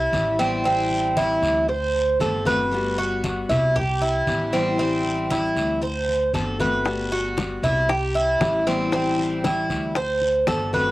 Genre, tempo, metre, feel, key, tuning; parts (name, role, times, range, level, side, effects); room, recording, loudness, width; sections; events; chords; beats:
latin, Cuban son and guajira; 116 BPM; 4/4; straight; G major; A4 = 436 Hz
Cuban tres; arpeggios; 0.0-10.9 s; C4 to C5; -22 LUFS; right 1 dB; cassette tape
upright bass; bass; 0.0-10.9 s; G1 to D2; -29 LUFS; equal
picked steel-string acoustic guitar; accompaniment; 0.1-10.9 s; D3 to F#4; -26 LUFS; left 3 dB; cassette tape
congas; percussion; 0.1-10.9 s; -31 LUFS; equal
guiro; percussion; 0.1-10.9 s; -36 LUFS; left 2 dB
bongos; percussion; 6.9-10.7 s; -26 LUFS; left 4 dB
light reverb; home recording on cassette; -20 LUFS; side -17 dB against mid
0.0-10.9 A section
0.0 Cmaj7; 0.7 Am7; 1.7 D7; 2.7 Gmaj7; 3.8 Cmaj7; 4.8 Am7; 5.8 D7; 6.9 Gmaj7; 7.9 Cmaj7; 8.9 Am7; 10.0 D7
0.13 | 0.65 1.17 1.69 2.20 | 2.72 3.24 3.75 4.27 | 4.79 5.31 5.82 6.34 | 6.86 7.37 7.89 8.41 | 8.92 9.44 9.96 10.47